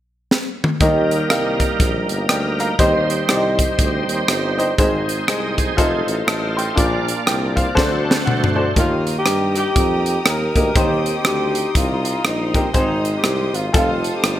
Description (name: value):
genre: uptempo gospel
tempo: 121 BPM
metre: 4/4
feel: swing 60% on 8ths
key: Eb major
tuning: A4 = 440 Hz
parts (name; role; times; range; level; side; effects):
- crisp fusion drum kit; drums; 0.3-14.4 s; hi-hat, kick drum, rim click, snare drum, toms; -20 LUFS; equal; none
- clear upright piano; accompaniment; 0.8-14.3 s; Ab2 to C6; -21 LUFS; left 1 dB; none
- bright tonewheel organ; sustained chords; 0.8-8.7 s; G3 to Eb5; -23 LUFS; right 2 dB; slow rotary speaker, overdrive, chorus vibrato
- breathy tuba; bass; 0.8-14.4 s; F1 to G2; -23 LUFS; equal; none
- dark saxophone section; melody; 8.8-14.4 s; G3 to Bb4; -21 LUFS; equal; none
- clear studio string section; sustained chords; 8.8-14.4 s; Eb5 to Eb6; -30 LUFS; left 1 dB; none
room: moderate lush hall reverb, RT60 1.5 s, small room ambience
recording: bright 1980s-style digital production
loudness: -16 LUFS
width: side -12 dB against mid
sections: 0.8-8.8 A section; 8.8-14.4 B section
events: drum fill 0.3-0.8, 7.8-8.8; upright piano fill 7.8-8.8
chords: 0.0 N.C.; 0.8 Eb; 4.8 Ab; 5.8 F7; 6.8 Bb; 7.8 D7; 8.8 Eb; 10.8 Cm; 12.7 Ab; 13.7 F7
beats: 0.31 | 0.81 1.30 1.80 2.30 | 2.79 3.29 3.79 4.29 | 4.78 5.28 5.78 6.27 | 6.77 7.27 7.77 8.26 | 8.76 9.26 9.76 10.25 | 10.75 11.25 11.75 12.24 | 12.74 13.24 13.73 14.23